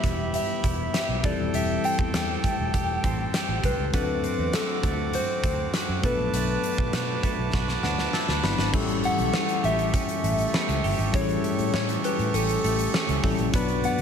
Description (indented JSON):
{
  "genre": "1980s-style pop",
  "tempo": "100 BPM",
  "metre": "4/4",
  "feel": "straight",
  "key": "unclear",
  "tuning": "A4 = 437 Hz",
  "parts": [
    { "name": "soft struck synth lead", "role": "melody", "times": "0.0-14.0 s", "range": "A4 to G5", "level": "-30 LUFS", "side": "left 2 dB", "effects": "chorus" },
    { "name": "bell-like tine electric piano", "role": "accompaniment", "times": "0.0-14.0 s", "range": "F#3 to B5", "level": "-30 LUFS", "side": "left 6 dB", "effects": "none" },
    { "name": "accordion", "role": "sustained chords", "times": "0.0-14.0 s", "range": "C4 to D6", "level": "-33 LUFS", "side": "right 5 dB", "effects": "none" },
    { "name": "clean electric guitar", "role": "riff", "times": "0.0-14.0 s", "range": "E3 to G4", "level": "-33 LUFS", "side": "right 10 dB", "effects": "analog chorus, tape echo" },
    { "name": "vintage muted fingered electric bass", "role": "bass", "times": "0.0-14.0 s", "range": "D#1 to B2", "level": "-29 LUFS", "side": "right 1 dB", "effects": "none" },
    { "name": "huge arena drum kit", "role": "drums", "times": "0.0-14.0 s", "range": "crash cymbal, hi-hat, kick drum, snare drum", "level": "-28 LUFS", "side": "equal", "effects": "gated reverb" }
  ],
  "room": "light reverb, small room ambience",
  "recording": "none",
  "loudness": "-22 LUFS",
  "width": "side -7 dB against mid",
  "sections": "0.0-8.7 A section; 8.7-14.0 B section",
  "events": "drum fill 7.5-8.7; tine electric piano fill 7.5-8.7",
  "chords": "0.0 Em; 1.2 Am7; 3.9 D7; 6.0 Bm7; 8.7 A7"
}